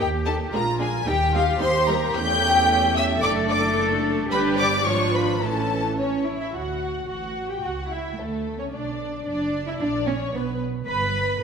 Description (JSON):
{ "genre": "quick classical-period movement for string orchestra", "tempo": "111 BPM", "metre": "2/4", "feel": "straight", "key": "D major", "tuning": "A4 = 441 Hz", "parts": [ { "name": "dark studio violin section", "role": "melody", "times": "0.0-11.4 s", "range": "A4 to G6", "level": "-27 LUFS", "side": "left 4 dB", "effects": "none" }, { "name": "dark studio violin section", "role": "second line", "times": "0.0-11.4 s", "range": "F4 to B5", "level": "-26 LUFS", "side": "left 1 dB", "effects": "none" }, { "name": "rich studio viola section", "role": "accompaniment", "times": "0.0-11.4 s", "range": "E3 to B4", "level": "-28 LUFS", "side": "right 1 dB", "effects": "none" }, { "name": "warm studio cello section", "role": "bass", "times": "0.0-11.4 s", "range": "A3 to B4", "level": "-28 LUFS", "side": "equal", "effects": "none" }, { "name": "warm studio double bass section", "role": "bass", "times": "0.0-11.3 s", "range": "F#1 to E2", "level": "-28 LUFS", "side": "right 3 dB", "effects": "none" } ], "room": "wet scoring stage reverb, RT60 1.7 s", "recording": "none", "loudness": "-21 LUFS", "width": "side -6 dB against mid", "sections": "0.0-6.5 A section; 6.5-11.4 B section", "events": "none", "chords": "0.0 Eb; 0.5 Bb7; 1.1 Eb; 2.2 A7/E; 3.2 D/F#; 4.3 G; 4.9 G#dim7; 5.4 A; 6.5 D; 7.6 C#madd11; 8.2 D5; 8.7 Bm; 9.8 Bbm; 10.3 N.C.; 10.9 G", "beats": "| 0.00 0.54 | 1.08 1.61 | 2.16 2.69 | 3.23 3.76 | 4.31 4.86 | 5.42 5.99 | 6.55 7.10 | 7.64 8.19 | 8.73 9.27 | 9.81 10.34 | 10.88 11.42" }